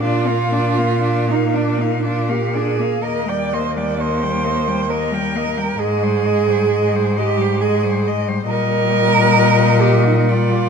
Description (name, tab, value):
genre	classical, lyrical piece for cello ensemble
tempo	59-69 BPM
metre	3/4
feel	rubato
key	Eb major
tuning	A4 = 442 Hz
part	clear cello	melody	0.0-10.7 s	C5 to G5	-24 LUFS	left 10 dB	none
part	rich cello	second line	0.0-10.7 s	D4 to D5	-19 LUFS	right 7 dB	none
part	rich cello	accompaniment	0.0-10.7 s	G3 to D4	-23 LUFS	left 5 dB	none
part	clear cello	bass	0.0-10.7 s	Eb2 to Bb2	-19 LUFS	equal	none
room	moderate recital hall reverb, RT60 1.6 s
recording	none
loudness	-15 LUFS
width	side -6 dB against mid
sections	0.0-10.7 A section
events	none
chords	0.0 Bb; 3.0 Eb; 5.8 Abmaj7; 8.5 Eb/Bb